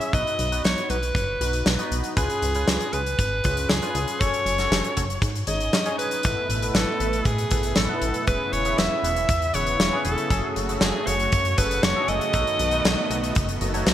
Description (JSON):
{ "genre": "synthwave", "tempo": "118 BPM", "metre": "4/4", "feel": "straight", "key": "unclear", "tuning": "A4 = 441 Hz", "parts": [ { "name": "edgy alto saxophone", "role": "melody", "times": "0.0-13.9 s", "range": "G#4 to E5", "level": "-25 LUFS", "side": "equal", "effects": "digital delay" }, { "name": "barky tine electric piano", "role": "stabs", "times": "0.0-13.9 s", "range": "B3 to D#5", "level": "-30 LUFS", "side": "left 1 dB", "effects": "analog chorus, low-pass filter, digital delay" }, { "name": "big rock drum kit", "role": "drums", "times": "0.0-13.9 s", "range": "hi-hat, snare drum", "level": "-26 LUFS", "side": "left 1 dB", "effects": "gated reverb" }, { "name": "chorused synth bass", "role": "bass", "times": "0.1-13.9 s", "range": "E1 to A2", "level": "-28 LUFS", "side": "equal", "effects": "none" }, { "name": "kick drum", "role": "drums", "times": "0.1-13.5 s", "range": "none", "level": "-28 LUFS", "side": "equal", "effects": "none" }, { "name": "lush unison pad", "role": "sustained chords", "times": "6.2-13.9 s", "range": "B2 to B4", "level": "-31 LUFS", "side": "right 2 dB", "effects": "chorus, sidechain pumping" } ], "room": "moderate plate reverb, RT60 1.6 s, small room ambience", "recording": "bright 1980s-style digital production", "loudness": "-20 LUFS", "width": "side -11 dB against mid", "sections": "0.0-6.2 A section; 6.2-13.9 B section", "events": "filter sweep on tine electric piano 6.2-13.9", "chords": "0.1 B; 2.2 C#7; 4.2 F#m; 5.2 G#sus4; 6.2 Asus2; 8.3 E6; 10.3 F#madd9; 12.3 B7", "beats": "| 0.14 0.65 1.15 1.66 | 2.17 2.68 3.19 3.70 | 4.20 4.71 5.22 5.73 | 6.24 6.75 7.25 7.76 | 8.27 8.78 9.29 9.80 | 10.31 10.81 11.32 11.83 | 12.34 12.85 13.36 13.87" }